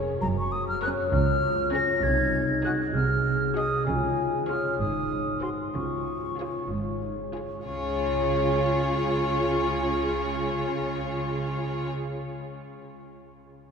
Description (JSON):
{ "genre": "cinematic, playful, whimsical film cue", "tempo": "65 BPM (dotted quarters)", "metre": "6/8", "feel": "straight", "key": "Db major", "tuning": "A4 = 438 Hz", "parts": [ { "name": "rich chamber violin section", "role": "melody", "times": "0.0-11.9 s", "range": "C5 to Eb5", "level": "-38 LUFS", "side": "left 5 dB", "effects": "none" }, { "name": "warm studio violin section", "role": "second line", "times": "0.0-11.9 s", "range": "Ab4 to Bb4", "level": "-38 LUFS", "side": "left 2 dB", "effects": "none" }, { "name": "rich chamber viola section", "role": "accompaniment", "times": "0.0-11.9 s", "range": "Db4 to Gb4", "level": "-35 LUFS", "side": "right 2 dB", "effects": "none" }, { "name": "dark French horn section", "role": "sustained chords", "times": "0.0-11.9 s", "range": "Ab3 to Ab4", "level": "-34 LUFS", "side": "left 2 dB", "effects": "none" }, { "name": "concert harp", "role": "arpeggios", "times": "0.0-12.2 s", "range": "F2 to F5", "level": "-32 LUFS", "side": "left 3 dB", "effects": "none" }, { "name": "rich studio double bass section", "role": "bass", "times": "0.0-11.9 s", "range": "Gb1 to Db2", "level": "-33 LUFS", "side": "right 3 dB", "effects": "none" }, { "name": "rich symphonic cello section", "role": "bass", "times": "0.0-11.9 s", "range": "Gb2 to Db3", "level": "-32 LUFS", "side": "right 3 dB", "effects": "none" }, { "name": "mellow silver concert flute", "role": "second line", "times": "0.2-11.9 s", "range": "Ab5 to Bb6", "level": "-30 LUFS", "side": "equal", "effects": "none" } ], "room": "wet cathedral reverb, RT60 5.0 s", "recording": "minimal, uncompressed stereo recording", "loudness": "-24 LUFS", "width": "side -6 dB against mid", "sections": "0.0-7.6 A section; 7.6-11.3 B section", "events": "none", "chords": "0.2 Gb; 1.1 Db; 2.0 Ab7/C; 3.9 Db; 4.8 Ab7; 5.7 Db", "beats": "| 0.21 1.12 | 2.03 2.95 | 3.87 4.79 | 5.74 6.70 | 7.65 8.57 | 9.49 10.41" }